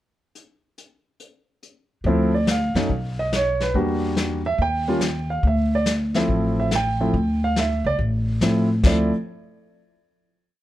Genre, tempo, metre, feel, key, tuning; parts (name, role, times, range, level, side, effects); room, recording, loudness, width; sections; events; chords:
jazz piano trio; 142 BPM; 4/4; swing 66% on 8ths; D minor; A4 = 445 Hz
vintage brush drum kit; drums; 0.4-9.2 s; brushed snare drum, crash cymbal, hi-hat, kick drum, snare drum; -24 LUFS; left 2 dB
upright bass; bass; 2.0-9.1 s; A1 to A2; -23 LUFS; equal
warm grand piano; melody; 2.1-9.1 s; F3 to G5; -22 LUFS; right 1 dB
light reverb; dark, warm production; -19 LUFS; side -14 dB against mid
0.4-2.0 pickup bar; 2.0-8.8 A section; 8.8-10.5 final chord
0.4 N.C.; 2.0 Dm9; 2.9 Bsus2; 3.7 Em7b5; 4.6 Ebadd9; 5.4 Dm9; 8.8 N.C.